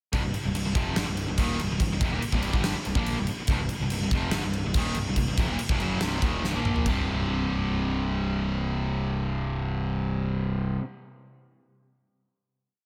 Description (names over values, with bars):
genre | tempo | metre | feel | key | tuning
hard rock | 143 BPM | 4/4 | straight | C minor | A4 = 440 Hz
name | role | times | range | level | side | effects
overdriven electric guitar | riff | 0.1-10.8 s | C2 to Bb3 | -33 LUFS | equal | none
overdriven electric guitar | riff | 0.1-10.8 s | C2 to Bb3 | -35 LUFS | equal | none
fuzz picked electric bass | bass | 0.1-10.8 s | C1 to Bb1 | -34 LUFS | equal | overdrive
huge arena drum kit | drums | 0.1-7.0 s | crash cymbal, kick drum, snare drum, toms | -31 LUFS | equal | none
room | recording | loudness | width
light reverb, small room reverb | none | -27 LUFS | mono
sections
0.1-6.9 riff; 6.9-10.2 final chord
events
drum fill 6.4-6.9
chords
0.1 Cm; 6.9 C5